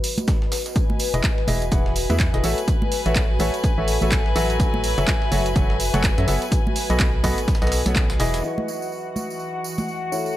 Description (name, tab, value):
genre	piano house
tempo	125 BPM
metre	4/4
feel	swing 59% on 16ths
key	E major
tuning	A4 = 440 Hz
part	breakbeat sampler-style drum kit	drums	0.0-8.4 s	hi-hat, snare drum, tambourine	-35 LUFS	equal	none
part	punchy analog drum machine	drums	0.0-10.2 s	handclaps, hi-hat	-28 LUFS	right 1 dB	low-pass filter on hats, low-pass filter on snare, low-pass filter on room
part	tambourine and congas	percussion	0.0-10.3 s	none	-31 LUFS	right 2 dB	none
part	deep dark ambient pad	texture	0.0-10.4 s	E3 to E5	-31 LUFS	left 1 dB	chorus, built-in reverb, sidechain pumping
part	electronic kick drum	drums	0.3-8.1 s	none	-21 LUFS	equal	none
part	rich chamber violin section	sustained chords	0.8-10.4 s	F#4 to G#5	-29 LUFS	left 3 dB	sidechain pumping, low-pass filter
part	clear grand piano	riff	1.1-10.4 s	E3 to G#5	-27 LUFS	left 1 dB	sidechain pumping, low-pass filter, dub echo
part	organ-like FM bass	bass	1.1-8.4 s	E1 to F#2	-23 LUFS	equal	sidechain pumping
room	light reverb, digital ambience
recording	none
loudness	-19 LUFS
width	side -14 dB against mid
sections	0.0-8.4 A section; 8.4-10.4 B section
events	filter sweep on grand piano 8.4-10.4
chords	0.0 B; 0.8 Emaj7; 2.4 A6; 4.6 F#m7; 6.5 B7; 8.4 Emaj7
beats	0.28 | 0.76 1.24 1.72 2.20 | 2.68 3.16 3.64 4.12 | 4.60 5.08 5.56 6.04 | 6.52 7.00 7.48 7.96 | 8.44 8.92 9.40 9.88 | 10.36